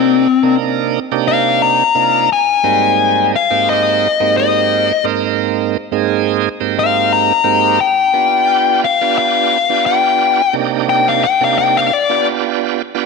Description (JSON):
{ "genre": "blues", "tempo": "87 BPM", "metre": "4/4", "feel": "swing 55% on 16ths", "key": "C minor", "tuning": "A4 = 436 Hz", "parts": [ { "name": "dark smooth lead guitar", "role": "melody", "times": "0.0-12.3 s", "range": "C4 to Bb5", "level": "-13 LUFS", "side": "left 8 dB", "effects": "overdrive" }, { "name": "overdriven tonewheel organ", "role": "accompaniment", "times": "0.0-13.1 s", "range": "Ab2 to Bb4", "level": "-16 LUFS", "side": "right 14 dB", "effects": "slow rotary speaker" } ], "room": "moderate plate reverb, RT60 2.6 s", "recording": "1960s-style stereo with parts hard left and right", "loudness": "-11 LUFS", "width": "side -4 dB against mid", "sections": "0.0-13.1 A section", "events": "lead electric guitar solo 0.0-13.1", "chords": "0.0 Cm7; 2.3 Abmaj7; 7.8 G7; 10.5 Cm7; 11.9 G7", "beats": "0.24 0.93 1.61 | 2.30 2.99 3.67 4.36 | 5.05 5.74 6.42 7.11 | 7.80 8.49 9.17 9.86 | 10.55 11.23 11.92 12.61" }